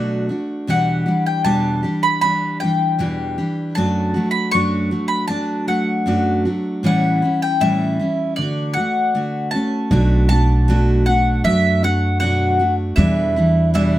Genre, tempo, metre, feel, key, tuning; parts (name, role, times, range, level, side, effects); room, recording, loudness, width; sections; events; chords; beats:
acoustic folk duo or small band; 78 BPM; 4/4; straight; D major; A4 = 440 Hz
mandolin; melody; 0.0-14.0 s; D5 to C#6; -20 LUFS; left 1 dB
picked steel-string acoustic guitar; accompaniment; 0.0-14.0 s; E2 to G4; -19 LUFS; equal
upright bass; bass; 9.9-14.0 s; B1 to F#2; -17 LUFS; right 1 dB
light reverb; close, detailed microphones; -16 LUFS; side -14 dB against mid
0.0-9.9 A section; 9.9-14.0 B section
0.0 Bm7; 0.7 Em7; 3.8 D/F#; 6.8 A7; 8.4 Dmaj7; 9.9 Bm7; 13.0 Em7
| 0.69 1.46 2.23 3.00 | 3.77 4.53 5.30 6.07 | 6.84 7.61 8.37 9.14 | 9.91 10.67 11.44 12.21 | 12.97 13.74